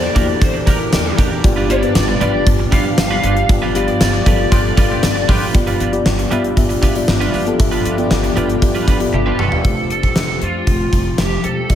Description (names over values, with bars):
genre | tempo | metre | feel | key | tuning
1980s-style pop | 117 BPM | 4/4 | straight | unclear | A4 = 440 Hz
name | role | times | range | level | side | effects
lead guitar through a small cranked amp | melody | 0.0-5.3, 9.1-11.8 s | F4 to F5 | -21 LUFS | equal | overdrive, lush chorus, tape echo
mellow FM electric piano | accompaniment | 0.0-11.8 s | G2 to A5 | -20 LUFS | left 2 dB | chorus
shimmering ambient pad | sustained chords | 0.0-11.8 s | D3 to E5 | -24 LUFS | equal | chorus, built-in reverb
twelve-string electric guitar | riff | 0.0-9.6 s | G3 to B4 | -24 LUFS | right 5 dB | lush chorus, tape echo
upright bass | bass | 0.0-11.8 s | E1 to F2 | -22 LUFS | equal | none
gated 80s drum kit | drums | 0.2-11.8 s | hi-hat, kick drum, snare drum, tambourine, toms | -16 LUFS | equal | none
warm horn section | stabs | 4.5-5.5 s | F4 to B4 | -25 LUFS | left 1 dB | none
room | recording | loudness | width
moderate plate reverb, RT60 1.5 s | dreamy mix soaked in reverb | -13 LUFS | side -10 dB against mid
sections
0.0-5.5 A section; 5.5-9.6 B section; 9.6-11.8 C section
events
band accent 3.5-5.5; drum fill 9.1-9.6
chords
0.0 Em7b5; 1.4 G7; 9.6 Fadd9